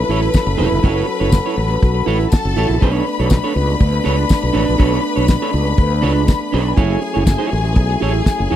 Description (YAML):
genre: disco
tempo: 121 BPM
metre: 4/4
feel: straight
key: F# minor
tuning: A4 = 440 Hz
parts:
  - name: clear studio string section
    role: second line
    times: 0.0-8.6 s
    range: G#4 to B5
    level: -22 LUFS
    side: left 4 dB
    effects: none
  - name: mellow French horn section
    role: sustained chords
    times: 0.0-8.6 s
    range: F#3 to A4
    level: -23 LUFS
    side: left 1 dB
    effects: stereo widening
  - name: fretless electric bass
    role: bass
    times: 0.0-8.6 s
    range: E1 to D2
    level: -18 LUFS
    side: equal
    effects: none
  - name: electric guitar at the edge of break-up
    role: accompaniment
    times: 0.1-8.6 s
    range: D4 to C#5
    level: -21 LUFS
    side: right 10 dB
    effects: none
  - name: damped 70s drum kit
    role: drums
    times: 0.1-8.6 s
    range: hi-hat, kick drum, snare drum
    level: -13 LUFS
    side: equal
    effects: none
  - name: tambourine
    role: percussion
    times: 0.3-8.4 s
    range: none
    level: -32 LUFS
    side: left 12 dB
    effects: none
room: small room ambience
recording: dry, close 1970s-style studio recording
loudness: -13 LUFS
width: side -11 dB against mid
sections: 0.0-8.6 A section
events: none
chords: 0.0 F#m7; 2.8 Bm9; 6.8 F#m7